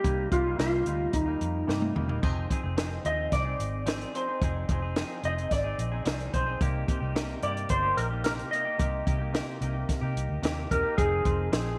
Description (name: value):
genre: indie pop, bedroom pop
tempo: 110 BPM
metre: 4/4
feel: straight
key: F dorian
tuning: A4 = 439 Hz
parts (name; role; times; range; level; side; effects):
- clean lap steel guitar; melody; 0.0-11.5 s; Eb4 to Eb5; -32 LUFS; equal; lush chorus, tape echo
- semi-hollow electric guitar; accompaniment; 0.0-11.8 s; C3 to Ab4; -38 LUFS; equal; lush chorus, vibrato effect
- vintage muted fingered electric bass; bass; 0.0-11.7 s; E1 to C3; -34 LUFS; equal; none
- compact cocktail drum kit; drums; 0.0-11.7 s; hi-hat, kick drum, snare drum, splash cymbal, toms; -33 LUFS; equal; none
room: moderate echo chamber reverb, RT60 1.7 s, small room ambience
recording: none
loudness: -29 LUFS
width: mono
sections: 0.0-11.0 A section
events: drum fill 1.7-2.2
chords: 0.0 Cm7; 2.2 Fm7; 6.6 Cm7; 11.0 Fm7